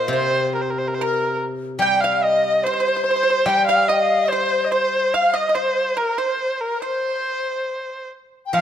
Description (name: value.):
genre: chinese traditional, Chinese chamber ensemble.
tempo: 71 BPM.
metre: 2/4.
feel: rubato.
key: C yu mode.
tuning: A4 = 440 Hz.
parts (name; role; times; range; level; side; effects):
warm erhu; melody; 0.0-8.6 s; Bb4 to G5; -21 LUFS; right 2 dB; none.
large dizi; second line; 0.0-8.6 s; Bb4 to G5; -23 LUFS; left 6 dB; none.
pipa; second line; 0.0-8.6 s; Bb4 to G5; -25 LUFS; right 6 dB; none.
steel-string zither; accompaniment; 0.0-6.0, 8.5-8.6 s; C3 to G3; -27 LUFS; left 2 dB; none.
room: moderate recital hall reverb, RT60 1.6 s.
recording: close, detailed microphones.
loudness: -18 LUFS.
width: side -9 dB against mid.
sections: 0.0-8.5 A section.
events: none.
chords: none.